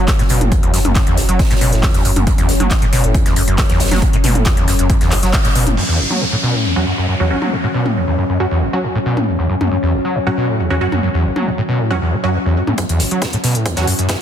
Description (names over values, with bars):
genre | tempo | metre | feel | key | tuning
driving peak-time techno | 137 BPM | 4/4 | straight | F# minor | A4 = 440 Hz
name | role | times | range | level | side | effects
overdriven acid bass | riff | 0.0-14.2 s | F#1 to F#3 | -18 LUFS | equal | distortion, lush chorus, sidechain pumping, ping-pong delay
saturated sub bass | bass | 0.0-5.8 s | F#1 | -18 LUFS | equal | overdrive, sidechain pumping, low-pass filter
deep dark ambient pad | drone | 0.0-14.2 s | F#3 to C#4 | -22 LUFS | left 2 dB | chorus, built-in reverb, sidechain pumping
electronic kick drum | drums | 0.1-5.4, 12.8-14.2 s | none | -16 LUFS | equal | high-pass filter on kick, high-pass filter on room
huge arena drum kit | drums | 0.1-5.8, 12.8-14.2 s | hi-hat, snare drum | -28 LUFS | right 3 dB | sidechain pumping on hats, high-pass filter on hats, high-pass filter on snare, high-pass filter on room
techno drum kit | drums | 0.1-14.2 s | crash cymbal, handclaps, hi-hat, toms | -21 LUFS | left 1 dB | sidechain pumping on hats, low-pass filter on hats, low-pass filter on snare, sidechain pumping on toms, low-pass filter on toms, sidechain pumping on cymbals, low-pass filter on cymbals, low-pass filter on room
downlifter and riser | sound effects | 5.8-9.3, 14.0-14.2 s | none | -24 LUFS | equal | none
supersaw stab | stabs | 6.8-13.9 s | F#3 to F#4 | -22 LUFS | right 2 dB | phaser, sidechain pumping, low-pass filter, ping-pong delay
room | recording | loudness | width
light reverb | dense, heavily limited modern master | -13 LUFS | side -9 dB against mid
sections
0.0-5.8 A section; 5.8-12.8 B section; 12.8-14.2 C section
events
band accent 5.3; filter sweep on drum 5.8-12.8; filter sweep on supersaw synth 5.8-12.8; build-up 12.8-14.2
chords
0.0 F#5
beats
0.08 | 0.52 0.96 1.39 1.83 | 2.27 2.71 3.15 3.58 | 4.02 4.46 4.90 5.33 | 5.77 6.21 6.65 7.09 | 7.53 7.96 8.40 8.84 | 9.28 9.71 10.15 10.59 | 11.03 11.47 11.90 12.34 | 12.78 13.22 13.66 14.10